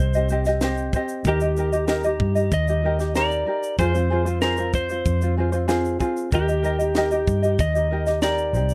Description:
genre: acoustic pop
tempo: 95 BPM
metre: 4/4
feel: straight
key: Eb major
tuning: A4 = 441 Hz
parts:
  - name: electric slide guitar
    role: melody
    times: 0.0-8.7 s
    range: G4 to Eb5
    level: -27 LUFS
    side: equal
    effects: none
  - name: ukulele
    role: accompaniment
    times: 0.0-8.7 s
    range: C4 to Eb5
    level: -27 LUFS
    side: equal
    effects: none
  - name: vintage muted fingered electric bass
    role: bass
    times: 0.0-8.7 s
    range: C2 to G2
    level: -26 LUFS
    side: equal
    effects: none
  - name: compact cocktail drum kit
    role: drums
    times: 0.1-8.7 s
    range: kick drum, shaker, snare drum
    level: -29 LUFS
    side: equal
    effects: none
room: light reverb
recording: none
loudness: -22 LUFS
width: mono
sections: 0.0-8.7 A section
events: none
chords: 0.0 Cm; 1.3 Eb; 3.8 Fm; 6.3 Eb

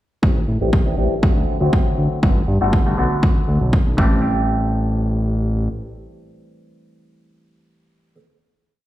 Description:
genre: filtered disco house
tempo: 120 BPM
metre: 4/4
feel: straight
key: A dorian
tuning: A4 = 438 Hz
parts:
  - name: clav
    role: accompaniment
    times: 0.2-8.2 s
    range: D3 to G4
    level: -23 LUFS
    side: equal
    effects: phaser, sidechain pumping, low-pass filter
  - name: fat analog bass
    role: bass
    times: 0.2-5.7 s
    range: G1 to A2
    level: -19 LUFS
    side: equal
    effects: tube saturation, sidechain pumping, low-pass filter
  - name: electronic kick drum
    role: drums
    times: 0.2-4.1 s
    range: none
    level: -17 LUFS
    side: equal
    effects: overdrive
room: light reverb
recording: played on a big sound system in a bare room, stone room reverb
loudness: -16 LUFS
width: side -14 dB against mid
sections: 0.2-4.2 breakdown; 4.2-8.2 final hit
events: filter sweep 0.2-4.2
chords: 0.2 Am7; 1.2 D7; 2.2 Gmaj9; 3.0 Bm7; 4.0 Am7

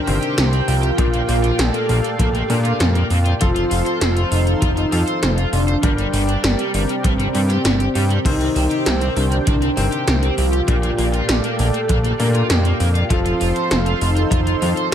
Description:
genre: synthwave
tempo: 99 BPM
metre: 4/4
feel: straight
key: C dorian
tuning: A4 = 440 Hz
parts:
  - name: wide unison lead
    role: melody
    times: 0.0-14.9 s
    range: C4 to A4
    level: -24 LUFS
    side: equal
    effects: ping-pong delay
  - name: chorused pulse-width pad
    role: sustained chords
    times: 0.0-14.9 s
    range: G4 to C6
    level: -26 LUFS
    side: right 3 dB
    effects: sidechain pumping
  - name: warm grand piano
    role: stabs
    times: 0.0-14.9 s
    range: Bb2 to C5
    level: -26 LUFS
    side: left 4 dB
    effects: digital delay
  - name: overdriven semi-hollow guitar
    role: riff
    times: 0.1-14.9 s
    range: G3 to C5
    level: -27 LUFS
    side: equal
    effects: wide subtle chorus, digital delay
  - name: fat analog bass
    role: bass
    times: 0.1-14.7 s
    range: F1 to Bb2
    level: -19 LUFS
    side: equal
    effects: sidechain pumping
  - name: 80s electronic pad drums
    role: drums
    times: 0.1-14.9 s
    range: crash cymbal, hi-hat, snare drum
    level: -23 LUFS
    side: equal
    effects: none
  - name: kick drum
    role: drums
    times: 1.0-14.4 s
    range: none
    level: -21 LUFS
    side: equal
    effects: none
room: studio ambience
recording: none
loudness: -15 LUFS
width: side -9 dB against mid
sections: 0.0-14.9 A section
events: none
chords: 0.0 Cm7; 1.0 Bb6; 3.4 F; 5.8 Gm; 8.3 Cm7; 10.7 Bb6; 13.1 F

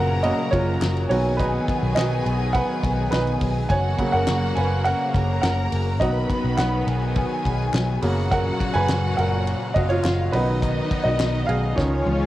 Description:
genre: piano-driven pop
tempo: 104 BPM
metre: 4/4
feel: straight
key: unclear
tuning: A4 = 440 Hz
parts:
  - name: rich studio violin section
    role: second line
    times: 0.0-12.3 s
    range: C#4 to B5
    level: -30 LUFS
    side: left 2 dB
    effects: cassette tape, tape echo, plate reverb
  - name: bright upright piano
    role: accompaniment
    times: 0.0-12.3 s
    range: A#2 to G#5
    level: -24 LUFS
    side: right 2 dB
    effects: cassette tape, plate reverb
  - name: lush unison pad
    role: sustained chords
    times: 0.0-12.3 s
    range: A#2 to E#4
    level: -28 LUFS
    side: left 1 dB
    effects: chorus, cassette tape, plate reverb
  - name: vintage muted picked electric bass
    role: bass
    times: 0.0-12.3 s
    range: F#1 to C#2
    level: -24 LUFS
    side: equal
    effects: none
  - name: natural country drum kit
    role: drums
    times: 0.2-12.2 s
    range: hi-hat, kick drum, ride cymbal, snare drum, toms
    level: -28 LUFS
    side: equal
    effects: cassette tape
  - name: group handclap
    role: percussion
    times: 0.8-11.3 s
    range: none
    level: -35 LUFS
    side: left 7 dB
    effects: none
room: moderate booth ambience, RT60 0.3 s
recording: home recording on cassette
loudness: -19 LUFS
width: side -15 dB against mid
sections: 0.0-12.3 A section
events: upright piano solo 0.0-12.3; drum fill 11.8-12.3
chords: 0.0 F#; 1.1 B; 3.7 F#; 6.0 B; 8.0 F#; 10.3 B

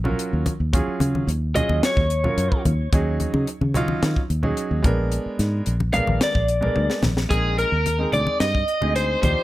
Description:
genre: electric jazz fusion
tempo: 110 BPM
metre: 4/4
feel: straight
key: unclear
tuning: A4 = 437 Hz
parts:
  - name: clear grand piano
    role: accompaniment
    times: 0.0-9.4 s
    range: F3 to Bb4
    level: -27 LUFS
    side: right 3 dB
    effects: none
  - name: fingered electric bass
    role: bass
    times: 0.0-9.3 s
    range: Bb1 to Eb3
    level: -22 LUFS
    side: equal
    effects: none
  - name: congas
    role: percussion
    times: 0.1-9.4 s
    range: none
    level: -27 LUFS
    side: left 1 dB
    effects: none
  - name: tight funk drum kit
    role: drums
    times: 0.2-9.4 s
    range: hi-hat, kick drum, snare drum, toms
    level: -24 LUFS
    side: equal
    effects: none
  - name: lightly driven lead guitar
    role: melody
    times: 1.6-2.6, 5.9-9.4 s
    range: Ab4 to F5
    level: -24 LUFS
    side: equal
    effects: tape echo
  - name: overdriven electric guitar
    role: second line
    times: 7.3-9.4 s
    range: Ab4 to Eb5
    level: -26 LUFS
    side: equal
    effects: none
room: light reverb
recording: none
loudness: -19 LUFS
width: side -16 dB against mid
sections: 0.0-7.3 A section; 7.3-9.4 B section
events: lead electric guitar solo 0.0-7.3; drum fill 6.8-7.3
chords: 0.0 Ebm11; 2.9 Ab7sus4/Eb; 4.8 Bb7b9; 7.3 Bb9sus4

